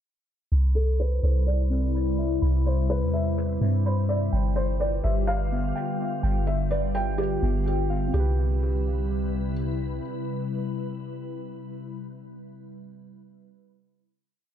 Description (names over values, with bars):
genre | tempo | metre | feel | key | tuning
hip hop, atmospheric cloud-rap | 126 BPM | 4/4 | half-time | C major | A4 = 440 Hz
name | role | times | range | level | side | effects
glassy FM pad | sustained chords | 1.3-11.9 s | C3 to B4 | -30 LUFS | left 3 dB | ensemble chorus, built-in reverb, phaser, low-pass filter
muted felt-like synth keys | arpeggios | 0.5-11.9 s | B3 to B5 | -36 LUFS | right 3 dB | chorus, low-pass filter, dub echo
soft 808-style bass | bass | 0.5-10.0 s | G1 to G2 | -24 LUFS | equal | none
felt-muted upright piano | melody | 0.8-9.5 s | G4 to G5 | -31 LUFS | equal | low-pass filter, dub echo
room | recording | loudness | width
digital ambience | echo-heavy mix | -23 LUFS | side -10 dB against mid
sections
0.5-8.1 breakdown; 8.1-11.9 final chord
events
filter sweep 0.5-8.1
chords
0.5 Cmaj7; 4.3 G7; 8.1 Cmaj7